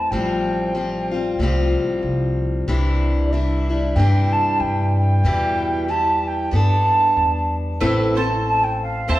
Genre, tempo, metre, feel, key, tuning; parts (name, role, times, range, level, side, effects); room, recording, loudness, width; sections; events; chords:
acoustic folk duo or small band; 94 BPM; 4/4; swing 57% on 8ths; A minor; A4 = 440 Hz
baroque flute; melody; 0.0-9.2 s; D5 to A5; -21 LUFS; right 1 dB
picked steel-string acoustic guitar; accompaniment; 0.0-9.2 s; E2 to A4; -23 LUFS; left 2 dB
upright bass; bass; 0.0-9.2 s; A1 to G2; -21 LUFS; equal
mandolin; arpeggios; 7.8-9.2 s; A3 to A5; -24 LUFS; right 2 dB
wet recital hall reverb, RT60 1.6 s; recorded in a church or concert hall; -17 LUFS; side -15 dB against mid
0.0-7.8 A section; 7.8-9.2 B section
flute solo 7.8-9.2
0.1 Fadd9/A; 2.7 Cadd9; 5.2 Em; 6.5 Gadd9; 7.8 Am